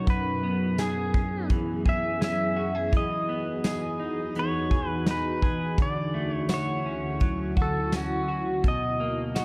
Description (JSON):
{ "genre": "dream pop", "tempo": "84 BPM", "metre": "4/4", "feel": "straight", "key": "unclear", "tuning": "A4 = 440 Hz", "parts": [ { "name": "pedal steel guitar", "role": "melody", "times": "0.0-9.4 s", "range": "F#4 to E5", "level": "-33 LUFS", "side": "equal", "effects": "none" }, { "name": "ethereal airy pad", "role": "sustained chords", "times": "0.0-9.4 s", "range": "D2 to A#5", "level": "-33 LUFS", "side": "equal", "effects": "ensemble chorus, built-in reverb" }, { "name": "clean electric guitar", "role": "arpeggios", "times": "0.0-9.4 s", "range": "F#2 to G#4", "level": "-34 LUFS", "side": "equal", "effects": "analog chorus, analog delay" }, { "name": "soft brush drum kit", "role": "drums", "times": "0.1-9.4 s", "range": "hi-hat, kick drum, snare drum, tambourine", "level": "-28 LUFS", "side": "equal", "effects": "none" } ], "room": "moderate echo chamber reverb, RT60 2.0 s", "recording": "dark, warm production", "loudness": "-27 LUFS", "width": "mono", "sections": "0.0-9.4 A section", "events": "none", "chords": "0.1 F#9sus4; 2.9 Emaj7; 5.8 Dmaj7; 8.6 Bmaj7" }